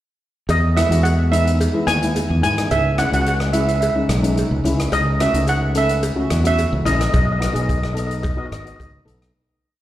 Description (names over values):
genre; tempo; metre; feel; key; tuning
calypso; 108 BPM; 4/4; straight; E major; A4 = 439 Hz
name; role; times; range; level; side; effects
steel pan; melody; 0.5-8.9 s; D#5 to G#5; -22 LUFS; right 2 dB; slapback echo, tape echo
modern bright fingered electric bass; bass; 0.5-9.3 s; G#1 to G#2; -19 LUFS; equal; none
swinging big-band drum kit; drums; 0.5-9.3 s; hi-hat, kick drum, rim click; -26 LUFS; equal; none
cowbell; percussion; 0.5-8.9 s; none; -30 LUFS; right 1 dB; slapback echo
steel pan; accompaniment; 0.8-9.3 s; G#3 to A4; -23 LUFS; left 2 dB; slapback echo
room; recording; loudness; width
moderate club reverb, RT60 0.8 s; live gig heard through the venue's PA, recital hall reverb; -16 LUFS; side -13 dB against mid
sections
0.5-9.3 verse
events
fade-out 7.1-9.3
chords
0.5 Emaj7; 2.7 C#m7; 4.9 F#m7/C#; 7.1 B